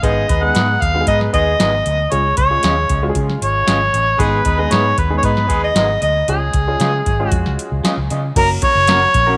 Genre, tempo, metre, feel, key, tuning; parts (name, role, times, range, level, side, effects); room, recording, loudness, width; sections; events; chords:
uptempo 1960s-style soul; 115 BPM; 4/4; straight; G# dorian; A4 = 440 Hz
mellow harmonica; melody; 0.0-9.4 s; G#4 to F#5; -19 LUFS; equal
warm horn section; second line; 0.0-5.7 s; G#3 to B4; -26 LUFS; equal
clear upright piano; accompaniment; 0.0-9.0 s; G#3 to G#5; -27 LUFS; equal
vintage muted fingered electric bass; bass; 0.0-9.3 s; F#1 to C#3; -22 LUFS; equal
soft vintage rhythm box; drums; 0.0-9.3 s; crash cymbal, hi-hat, kick drum, snare drum; -23 LUFS; equal; overdrive
electric guitar through a small old amp; stabs; 0.6-9.4 s; G#3 to A#4; -28 LUFS; equal; vibrato effect, tape echo
congas; percussion; 8.4-9.0 s; -34 LUFS; equal
light reverb, small room reverb; -16 LUFS; mono
0.0-8.4 A section; 8.4-9.4 B section
upright piano fill 7.6-8.4
0.0 G#m; 2.1 C#; 4.2 G#m; 6.3 C#; 8.4 F#